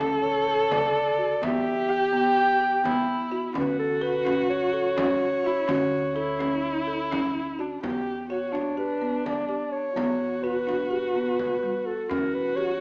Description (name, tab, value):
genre	contemporary instrumental, chamber music in an uneven meter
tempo	253 BPM (eighths)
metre	9/8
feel	straight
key	E dorian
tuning	A4 = 440 Hz
part	dark viola	second line	0.0-12.8 s	D4 to A4	-30 LUFS	equal	none
part	folk marimba with soft mallets	arpeggios	0.0-12.8 s	C#3 to A4	-32 LUFS	equal	none
part	upright bass	bass	0.0-12.8 s	D2 to E2	-46 LUFS	equal	none
part	frame drum	percussion	0.0-12.5 s	none	-40 LUFS	equal	none
part	dark clarinet	melody	0.2-12.8 s	A4 to G5	-29 LUFS	equal	none
room	moderate scoring stage reverb, RT60 1.6 s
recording	small speaker sound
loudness	-26 LUFS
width	mono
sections	0.0-7.8 A section; 7.8-12.8 B section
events	none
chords	0.0 Dmaj7; 1.4 Em; 3.6 Dmaj7; 7.8 Em9; 12.1 F#7b9/E